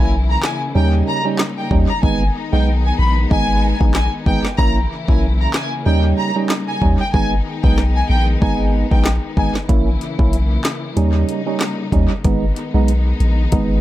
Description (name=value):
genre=dancehall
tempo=94 BPM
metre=4/4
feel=swing 56% on 16ths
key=G# harmonic minor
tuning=A4 = 441 Hz
part: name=warm studio violin section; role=melody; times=0.0-9.5 s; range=G5 to B5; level=-23 LUFS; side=left 1 dB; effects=tape echo
part: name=percussive organ stab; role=accompaniment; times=0.0-13.8 s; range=G3 to E4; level=-21 LUFS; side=right 4 dB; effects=chorus
part: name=warm studio string section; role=sustained chords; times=0.0-13.8 s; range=C#3 to E4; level=-26 LUFS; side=left 3 dB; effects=sidechain pumping
part: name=punchy sub bass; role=bass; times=0.0-13.8 s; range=G#1 to D#2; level=-16 LUFS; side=equal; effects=none
part: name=afro-pop drum kit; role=drums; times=0.4-13.7 s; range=handclaps, hi-hat, kick drum, rim click, snare drum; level=-19 LUFS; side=equal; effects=none
room=little or no reverb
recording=echo-heavy mix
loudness=-14 LUFS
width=side -14 dB against mid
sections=0.0-13.8 A section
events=break 0.0-9.7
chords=0.0 A#dim; 0.8 D#7; 2.0 G#m; 4.6 A#dim; 5.9 D#7; 7.1 G#m; 9.7 A#dim; 11.0 D#7; 12.2 G#m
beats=0.12 0.76 1.40 | 2.03 2.67 3.31 3.95 | 4.59 5.22 5.86 6.50 | 7.14 7.78 8.42 9.05 | 9.69 10.33 10.97 11.61 | 12.25 12.88 13.52